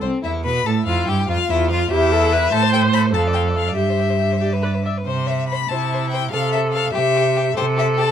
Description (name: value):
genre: quick classical-period movement for string quartet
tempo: 95 BPM (dotted quarters)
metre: 6/8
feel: rubato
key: C major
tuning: A4 = 440 Hz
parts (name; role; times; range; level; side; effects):
- rich violin; melody; 0.0-8.1 s; C5 to B5; -22 LUFS; left 8 dB; none
- rich violin; second line; 0.0-8.1 s; C4 to F5; -27 LUFS; left 3 dB; none
- rich viola; accompaniment; 0.0-8.1 s; E4 to E5; -22 LUFS; equal; none
- clear cello; bass; 0.0-8.1 s; C2 to C3; -20 LUFS; right 4 dB; none
room: light reverb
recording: dark, warm production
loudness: -16 LUFS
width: side -9 dB against mid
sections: 0.0-8.1 A section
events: none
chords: 0.0 C (rootless); 1.3 N.C.; 1.9 Emadd11; 2.5 Am; 3.1 Dm/F; 3.8 C/G; 4.4 G; 5.1 C; 6.3 F/C; 6.9 C